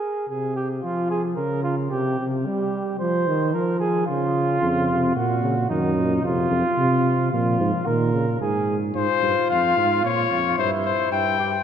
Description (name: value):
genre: classical, imitative canzona for brass ensemble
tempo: 111 BPM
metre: 4/4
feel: straight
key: Bb minor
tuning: A4 = 440 Hz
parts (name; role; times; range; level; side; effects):
- mellow flugelhorn; second line; 0.0-11.5 s; Eb4 to C5; -24 LUFS; right 2 dB; none
- dark trombone; accompaniment; 0.3-8.3 s; Bb2 to G3; -25 LUFS; equal; none
- mellow tuba; bass; 4.6-11.6 s; F2 to C3; -24 LUFS; right 1 dB; none
- clear trumpet; melody; 9.0-11.6 s; C5 to G5; -21 LUFS; left 9 dB; none
room: wet church reverb, RT60 3.2 s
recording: none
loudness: -20 LUFS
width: side -8 dB against mid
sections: 0.0-11.6 A section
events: none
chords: 0.0 Ab; 0.8 Bbm/F; 1.9 C5; 3.0 Fm; 4.1 Dbmaj7; 5.2 Ebm/Bb; 6.2 F5; 7.3 Bb5; 8.4 Fm/Ab; 9.5 Bbm/F; 10.6 C/G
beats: 0.29 0.83 1.37 | 1.91 2.46 3.00 3.54 | 4.08 4.62 5.16 5.70 | 6.24 6.78 7.33 7.87 | 8.41 8.96 9.50 10.04 | 10.58 11.13